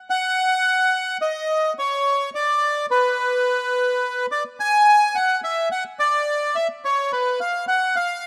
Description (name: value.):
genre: tango.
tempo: 107 BPM.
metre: 4/4.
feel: rubato.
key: unclear.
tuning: A4 = 441 Hz.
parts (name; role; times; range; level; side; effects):
bandoneon; solo; 0.1-8.3 s; B4 to G#5; -21 LUFS; equal; none.
room: light reverb, small room ambience.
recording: rough home demo mix.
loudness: -21 LUFS.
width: mono.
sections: 0.1-8.3 A section.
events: none.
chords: none.